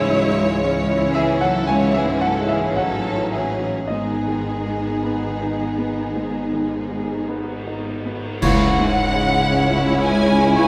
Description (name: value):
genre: cinematic, emotional film score for orchestra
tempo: 52-57 BPM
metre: 4/4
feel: rubato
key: C# minor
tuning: A4 = 438 Hz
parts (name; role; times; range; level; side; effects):
- rich studio violin section; melody; 0.0-10.7 s; D#4 to G#5; -31 LUFS; equal; none
- clear studio violin section; second line; 0.0-10.7 s; E4 to C#5; -29 LUFS; equal; none
- clear baby grand piano; accompaniment; 0.0-10.7 s; C#2 to G#5; -26 LUFS; equal; none
- rich studio viola section; accompaniment; 0.0-10.7 s; E3 to E4; -30 LUFS; equal; none
- mellow French horn section; sustained chords; 0.0-10.7 s; E3 to E4; -29 LUFS; equal; none
- rich studio cello section; bass; 0.0-10.7 s; C#2 to G#3; -28 LUFS; equal; none
- rich studio double bass section; bass; 0.0-10.7 s; G#1 to C#2; -30 LUFS; equal; none
- cymbal swell, clash cymbals and concert bass drum; percussion; 3.9-10.5 s; none; -31 LUFS; equal; none
- clear oboe; second line; 8.4-10.7 s; C#5; -28 LUFS; equal; none
- mellow hollow large flute ensemble; second line; 8.4-10.7 s; F#5 to G#5; -26 LUFS; equal; none
- warm clarinet; second line; 8.4-10.7 s; E4; -27 LUFS; equal; none
- timpani; percussion; 8.4-10.0 s; C#3; -28 LUFS; equal; none
room: wet scoring stage reverb, RT60 1.6 s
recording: none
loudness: -20 LUFS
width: mono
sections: 0.0-8.4 A section; 8.4-10.7 B section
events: band accent 8.4-9.5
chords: 0.0 C#m; 3.9 G#m; 8.4 C#m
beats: 0.62 1.68 2.77 | 3.89 5.03 6.16 7.29 | 8.42 9.51 10.56